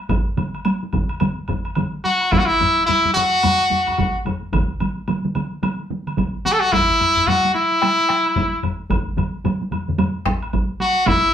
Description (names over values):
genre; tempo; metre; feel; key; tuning
japanese traditional, taiko drum ensemble; 109 BPM; 4/4; swing 60% on 16ths; unclear; A4 = 440 Hz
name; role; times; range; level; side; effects
taiko ensemble; percussion; 0.1-11.3 s; none; -25 LUFS; right 2 dB; none
taiko ensemble; percussion; 0.1-11.2 s; none; -26 LUFS; left 4 dB; none
taiko ensemble; percussion; 0.1-10.4 s; none; -26 LUFS; right 3 dB; none
taiko ensemble; percussion; 0.1-11.2 s; none; -25 LUFS; equal; none
woodblock; percussion; 0.1-11.2 s; none; -32 LUFS; equal; none
brilliant trumpet; melody; 2.0-11.3 s; E4 to A4; -16 LUFS; left 1 dB; none
room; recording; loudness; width
wet studio reverb, RT60 0.5 s; band playing live in one room; -17 LUFS; side -9 dB against mid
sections
0.0-2.3 A section; 2.3-11.3 B section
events
speeding up 0.0-11.3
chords
none